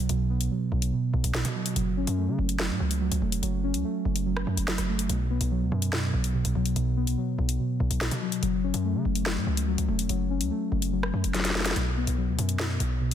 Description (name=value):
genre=hip hop, drill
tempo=144 BPM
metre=4/4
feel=half-time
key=unclear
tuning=A4 = 440 Hz
part: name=muted felt-like synth keys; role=accompaniment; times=0.0-13.1 s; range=B2 to C#4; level=-28 LUFS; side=right 1 dB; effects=chorus, low-pass filter
part: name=hard-hitting 808-style bass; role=bass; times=0.0-13.1 s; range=E1 to C#3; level=-28 LUFS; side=equal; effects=none
part: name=drill drum kit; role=drums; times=0.1-13.1 s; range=hi-hat, rim click, snare drum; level=-31 LUFS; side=left 1 dB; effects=none
room=light reverb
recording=dense, heavily limited modern master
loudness=-25 LUFS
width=side -10 dB against mid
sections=0.0-11.8 A section; 11.8-13.1 B section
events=drum fill 11.3-11.8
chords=0.0 B5; 1.8 F#m; 5.1 B5; 8.4 F#m; 11.8 B5